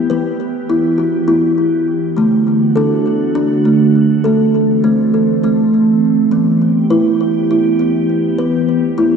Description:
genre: world meditative, meditative tuned percussion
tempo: 202 BPM (eighths)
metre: 7/8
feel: straight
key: unclear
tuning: A4 = 440 Hz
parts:
  - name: glassy FM pad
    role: sustained chords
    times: 0.0-9.2 s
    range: D3 to G4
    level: -17 LUFS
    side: right 1 dB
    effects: ensemble chorus, built-in reverb, phaser
  - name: kalimba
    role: arpeggios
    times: 0.0-9.2 s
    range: D3 to B4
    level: -12 LUFS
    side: right 1 dB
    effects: ping-pong delay
room: wet lush hall reverb, RT60 2.8 s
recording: dreamy mix soaked in reverb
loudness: -11 LUFS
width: side -6 dB against mid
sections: 0.0-9.2 A section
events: none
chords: 0.0 Em; 2.2 D; 4.2 Am; 6.3 Em

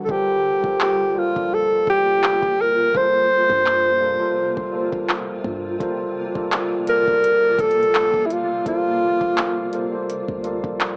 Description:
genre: contemporary R&B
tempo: 84 BPM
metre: 4/4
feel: swing 54% on 16ths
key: unclear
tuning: A4 = 440 Hz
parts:
  - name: breathy alto saxophone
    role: melody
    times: 0.0-10.1 s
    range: E4 to C5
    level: -20 LUFS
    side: equal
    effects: cassette tape
  - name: mellow tine electric piano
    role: accompaniment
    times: 0.0-11.0 s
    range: E3 to D5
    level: -30 LUFS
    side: equal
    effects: cassette tape
  - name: granular cloud pad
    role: sustained chords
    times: 0.0-11.0 s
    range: C3 to F4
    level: -32 LUFS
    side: equal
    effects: built-in reverb, cassette tape
  - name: clean 808-style bass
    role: bass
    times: 0.1-11.0 s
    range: G1 to G2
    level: -41 LUFS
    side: equal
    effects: none
  - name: smooth R&B drum kit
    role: drums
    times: 0.1-11.0 s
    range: handclaps, hi-hat, kick drum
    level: -28 LUFS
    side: equal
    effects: none
room: light reverb, digital ambience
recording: home recording on cassette, small speaker sound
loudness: -20 LUFS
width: mono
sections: 0.0-11.0 A section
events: none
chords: 0.1 Gm11

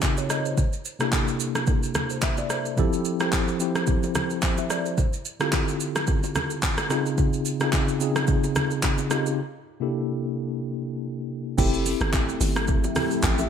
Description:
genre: amapiano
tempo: 109 BPM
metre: 4/4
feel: swing 55% on 16ths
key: F major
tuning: A4 = 440 Hz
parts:
  - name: mellow tine electric piano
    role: accompaniment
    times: 0.0-13.5 s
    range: C3 to G5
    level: -26 LUFS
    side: left 1 dB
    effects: medium stereo tremolo
  - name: deep house drum kit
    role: drums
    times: 0.0-13.5 s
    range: crash cymbal, handclaps, hi-hat, kick drum, rim click, shaker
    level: -24 LUFS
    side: equal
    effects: gated reverb
  - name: bongos and congas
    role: percussion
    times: 0.0-13.5 s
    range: none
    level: -33 LUFS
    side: right 3 dB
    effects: none
  - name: deep dark ambient pad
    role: sustained chords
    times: 12.1-13.5 s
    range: F3 to E5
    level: -31 LUFS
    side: left 2 dB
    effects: chorus, built-in reverb, sidechain pumping
  - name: hollow log drum bass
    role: bass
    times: 11.6-13.5 s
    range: F1 to A1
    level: -26 LUFS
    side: equal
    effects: none
room: light reverb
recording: bright 1980s-style digital production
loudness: -22 LUFS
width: side -8 dB against mid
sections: 0.0-11.6 A section; 11.6-13.5 B section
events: break 9.4-11.6; drop 11.6-13.5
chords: 0.0 Dbmaj9; 0.6 C13; 2.8 Fmaj9; 5.0 Dm11; 6.9 Dbmaj9; 9.4 C13; 11.6 Fmaj9

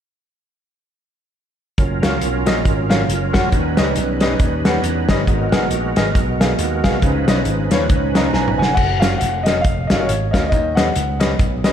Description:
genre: uptempo gospel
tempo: 137 BPM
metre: 4/4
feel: swing 59% on 8ths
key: F# major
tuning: A4 = 440 Hz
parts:
  - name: bright tonewheel organ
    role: sustained chords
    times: 1.8-8.7 s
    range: E#3 to B4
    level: -23 LUFS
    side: right 3 dB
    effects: fast rotary speaker, chorus vibrato
  - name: slap bass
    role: bass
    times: 1.8-11.7 s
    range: E#1 to E2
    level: -22 LUFS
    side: equal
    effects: none
  - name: warm soul drum kit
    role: drums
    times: 1.8-11.7 s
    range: crash cymbal, hi-hat, kick drum, snare drum, toms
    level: -18 LUFS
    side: equal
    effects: none
  - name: bright upright piano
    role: accompaniment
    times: 2.0-11.7 s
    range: G#2 to A#5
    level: -22 LUFS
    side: left 2 dB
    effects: slapback echo
  - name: warm grand piano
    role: melody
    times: 8.6-11.6 s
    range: C#5 to G#5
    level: -21 LUFS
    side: left 1 dB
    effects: slapback echo
room: moderate scoring stage reverb, RT60 2.0 s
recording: big arena sound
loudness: -15 LUFS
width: side -9 dB against mid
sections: 1.8-8.8 A section; 8.8-11.7 B section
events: upright piano fill 7.9-8.8; drum fill 8.3-8.8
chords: 1.8 F#maj7; 3.5 D#7b13; 5.3 G#m9; 7.0 C#9; 8.8 F#maj7; 10.5 D#7alt

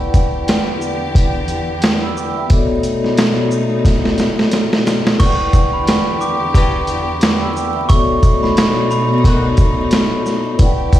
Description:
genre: hip hop, boom-bap hip-hop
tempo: 89 BPM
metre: 4/4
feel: swing 58% on 16ths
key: E dorian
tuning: A4 = 440 Hz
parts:
  - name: vibraphone with soft mallets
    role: accompaniment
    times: 0.0-11.0 s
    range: B3 to E6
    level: -20 LUFS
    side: left 2 dB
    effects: plate reverb
  - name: clear studio string section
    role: sustained chords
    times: 0.0-11.0 s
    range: E2 to G4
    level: -22 LUFS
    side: equal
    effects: none
  - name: boom bap sampler-style drum kit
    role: drums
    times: 0.1-11.0 s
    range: crash cymbal, hi-hat, kick drum, shaker, snare drum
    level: -14 LUFS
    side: equal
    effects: none
  - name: glockenspiel with soft plastic mallets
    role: melody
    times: 5.2-10.1 s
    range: B5 to D6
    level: -22 LUFS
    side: right 1 dB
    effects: ping-pong delay, plate reverb
  - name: clear horn section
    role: stabs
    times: 6.5-9.5 s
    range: D#3 to G4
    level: -25 LUFS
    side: left 3 dB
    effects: ping-pong delay, plate reverb
room: light reverb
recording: played on a big sound system in a bare room, stone room reverb, vinyl crackle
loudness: -13 LUFS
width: side -13 dB against mid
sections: 0.0-5.2 A section; 5.2-11.0 B section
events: drum fill 3.9-5.2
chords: 0.0 Em7; 2.5 B7; 5.2 Em7; 7.9 B7

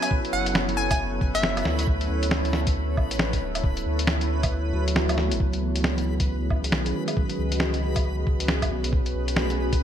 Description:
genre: future garage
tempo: 136 BPM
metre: 4/4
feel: swing 62% on 16ths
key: C# minor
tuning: A4 = 440 Hz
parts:
  - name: hollow square pluck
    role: melody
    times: 0.0-1.9 s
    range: E5 to G#5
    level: -28 LUFS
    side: left 1 dB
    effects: chorus, digital delay
  - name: bell-like tine electric piano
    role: accompaniment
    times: 0.0-9.8 s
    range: D#3 to F#4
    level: -33 LUFS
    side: right 3 dB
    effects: ensemble chorus, sidechain pumping, ping-pong delay
  - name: warbly tape-like pad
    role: sustained chords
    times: 0.0-9.8 s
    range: F#3 to D#5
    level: -30 LUFS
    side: equal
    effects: chorus, built-in reverb, vintage 12-bit sampler grit, sidechain pumping
  - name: lo-fi sampler-style drum kit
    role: drums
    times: 0.0-9.8 s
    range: hi-hat, snare drum, woodblock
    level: -27 LUFS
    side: equal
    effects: none
  - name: backwards swelling texture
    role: texture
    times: 0.0-9.8 s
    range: B4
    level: -38 LUFS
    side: equal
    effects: built-in reverb
  - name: electronic kick drum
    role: drums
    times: 0.1-9.8 s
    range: none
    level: -25 LUFS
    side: equal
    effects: none
  - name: warm sub bass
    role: bass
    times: 0.3-9.8 s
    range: D1 to D2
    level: -27 LUFS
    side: equal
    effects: sidechain pumping
room: light reverb, digital ambience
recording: bright 1980s-style digital production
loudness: -22 LUFS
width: side -9 dB against mid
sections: 0.0-5.4 A section; 5.4-9.8 B section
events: kick drops out 4.5-5.4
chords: 0.0 F#m7; 1.9 Dmaj7; 5.4 C#m11; 8.9 B7(no3)

